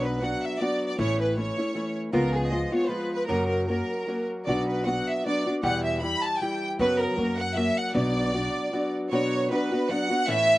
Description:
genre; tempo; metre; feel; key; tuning
mexican folk, mariachi; 156 BPM; 3/4; swing 54% on 8ths, rubato; B minor; A4 = 440 Hz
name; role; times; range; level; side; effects
rich studio violin section; melody; 0.0-10.6 s; G#4 to B5; -27 LUFS; right 1 dB; none
nylon-string guitar; accompaniment; 0.0-10.6 s; E2 to G4; -27 LUFS; left 1 dB; none
upright bass; bass; 0.0-8.5 s; A1 to F#2; -32 LUFS; equal; none
room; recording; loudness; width
little or no reverb; recorded outdoors, with no room sound, nothing above 10.4 kHz; -24 LUFS; side -17 dB against mid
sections
0.0-9.1 A section; 9.1-10.6 A section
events
none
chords
0.0 Bm; 1.0 A; 2.1 C#7; 3.3 F#; 4.5 Bm; 5.6 Em; 6.8 F#sus4; 7.2 F#; 7.9 Bm

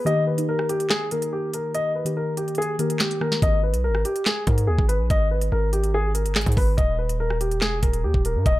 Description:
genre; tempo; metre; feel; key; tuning
hip hop, drill; 143 BPM; 4/4; half-time; unclear; A4 = 440 Hz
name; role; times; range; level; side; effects
muted felt-like synth keys; accompaniment; 0.0-3.4 s; D#3 to A#4; -26 LUFS; left 1 dB; chorus, low-pass filter
dark concert grand piano; melody; 0.1-8.6 s; G4 to D#5; -25 LUFS; left 1 dB; low-pass filter
drill drum kit; drums; 0.1-8.6 s; handclaps, hi-hat, kick drum, rim click, snare drum; -23 LUFS; equal; none
distorted 808-style bass; bass; 3.4-8.6 s; D#1 to G#2; -23 LUFS; equal; distortion
room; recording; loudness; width
little or no reverb; none; -20 LUFS; side -16 dB against mid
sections
0.0-8.6 A section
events
break 0.0-3.4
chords
0.1 D#; 3.4 N.C.; 6.8 D#5

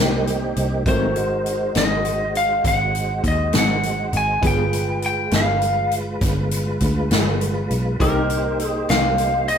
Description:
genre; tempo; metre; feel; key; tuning
slow blues; 67 BPM (dotted quarters); 12/8; straight; C minor; A4 = 440 Hz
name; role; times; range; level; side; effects
dark baby grand piano; accompaniment; 0.0-9.6 s; Eb4 to D6; -30 LUFS; right 5 dB; none
mellow electric guitar; accompaniment; 0.0-9.1 s; Ab2 to Ab4; -27 LUFS; left 4 dB; tremolo
tonewheel organ; sustained chords; 0.0-9.6 s; Ab3 to Db5; -27 LUFS; right 1 dB; slow rotary speaker, chorus vibrato
fingered electric bass; bass; 0.0-9.6 s; G1 to Eb2; -24 LUFS; equal; none
swinging big-band drum kit; drums; 0.3-9.6 s; hi-hat, kick drum, snare drum; -23 LUFS; equal; none
lightly driven lead guitar; melody; 0.9-9.6 s; Bb4 to Ab5; -21 LUFS; left 1 dB; none
room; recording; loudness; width
light reverb; rough rehearsal-room recording, warm saturation; -18 LUFS; side -8 dB against mid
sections
0.0-9.6 A section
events
none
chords
0.0 Cm7; 0.9 Ab7; 4.4 G7b9; 8.0 Cm7

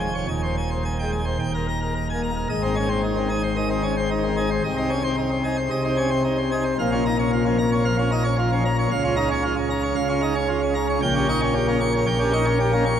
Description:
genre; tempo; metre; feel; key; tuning
classical, organ toccata; 112 BPM; 4/4; straight; Ab major; A4 = 445 Hz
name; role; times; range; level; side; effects
pipe organ, plenum; solo; 0.0-13.0 s; Eb1 to Db6; -20 LUFS; equal; none
room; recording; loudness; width
wet cathedral reverb, RT60 4.8 s; none; -20 LUFS; side -9 dB against mid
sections
0.0-2.5 A section; 2.5-13.0 B section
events
none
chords
0.3 Ab/Eb; 1.4 Eb; 2.5 Ab; 4.6 Ab/C; 6.8 Bbm; 8.9 Bbm/Db; 11.0 Gdim/Bb

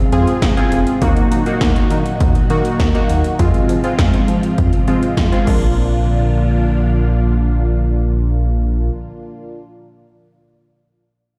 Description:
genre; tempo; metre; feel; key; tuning
synth-pop; 101 BPM; 4/4; straight; unclear; A4 = 438 Hz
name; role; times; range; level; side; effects
soft string machine; sustained chords; 0.0-8.9 s; Ab2 to Gb4; -24 LUFS; equal; ensemble chorus
warm analog keys; accompaniment; 0.1-9.6 s; Ab3 to Ab4; -22 LUFS; equal; chorus, phaser
chorused synth bass; bass; 0.1-8.9 s; F1 to F3; -19 LUFS; equal; none
80s electronic pad drums; drums; 0.1-5.6 s; crash cymbal, hi-hat, kick drum, snare drum; -19 LUFS; equal; none
room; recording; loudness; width
moderate scoring stage reverb, RT60 2.0 s, digital ambience; played on a big sound system in a bare room, stone room reverb; -16 LUFS; mono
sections
0.0-5.8 A section; 5.8-8.1 B section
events
none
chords
0.0 Fm; 1.0 Ebm; 3.4 Fm; 5.5 Bb

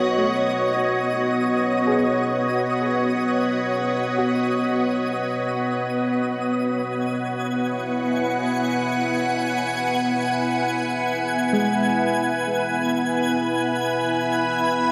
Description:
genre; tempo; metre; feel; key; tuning
ambient; free time; none; none; unclear; A4 = 442 Hz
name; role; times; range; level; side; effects
soft additive organ-like pad; sustained chords; 0.0-14.9 s; B3 to G#5; -23 LUFS; equal; ensemble chorus, built-in reverb, shimmer reverb
soft round pluck; arpeggios; 0.0-14.9 s; G#3 to G#5; -31 LUFS; equal; lush chorus, delay, shimmer reverb
twinkling granular texture; texture; 0.0-14.9 s; D#6 to G#6; -34 LUFS; equal; built-in reverb, shimmer reverb
room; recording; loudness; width
wet scoring stage reverb, RT60 2.0 s, digital ambience; none; -22 LUFS; mono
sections
0.0-14.9 A section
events
fade-in on synth pluck 0.0-14.9; fade-in on synth texture 0.0-14.9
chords
0.0 B7; 6.6 E69

